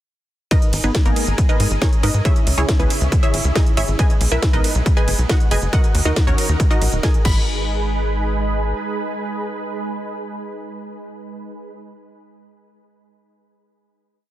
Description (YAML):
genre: uplifting trance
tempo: 138 BPM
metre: 4/4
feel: straight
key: G# minor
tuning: A4 = 440 Hz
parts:
  - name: wide unison pluck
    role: melody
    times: 0.5-12.1 s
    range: A#3 to B5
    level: -24 LUFS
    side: right 1 dB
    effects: sidechain pumping, tape echo
  - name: analog string pad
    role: sustained chords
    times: 0.5-11.7 s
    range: C#3 to D#5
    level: -27 LUFS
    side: right 2 dB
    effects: ensemble chorus, sidechain pumping
  - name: electronic kick drum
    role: drums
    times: 0.5-7.3 s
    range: none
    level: -17 LUFS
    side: equal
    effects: none
  - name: techno drum kit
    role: drums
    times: 0.5-7.3 s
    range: crash cymbal, hi-hat, ride cymbal, snare drum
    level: -25 LUFS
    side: equal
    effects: none
  - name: tight sequencer bass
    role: bass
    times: 0.7-8.7 s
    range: D#1 to G#2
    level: -20 LUFS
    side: equal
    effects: sidechain pumping
room: little or no reverb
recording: dense, heavily limited modern master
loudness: -16 LUFS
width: side -14 dB against mid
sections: 0.5-7.5 drop; 7.5-10.9 final hit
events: drop 0.5-7.5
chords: 0.5 G#madd9; 2.3 C#madd9; 4.0 G#madd9/B; 5.7 D#m; 7.3 G#m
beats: | 0.51 0.95 1.38 1.82 | 2.25 2.69 3.12 3.56 | 3.99 4.42 4.86 5.29 | 5.73 6.16 6.60 7.03 | 7.47 7.90 8.34 8.77 | 9.21 9.64 10.08 10.51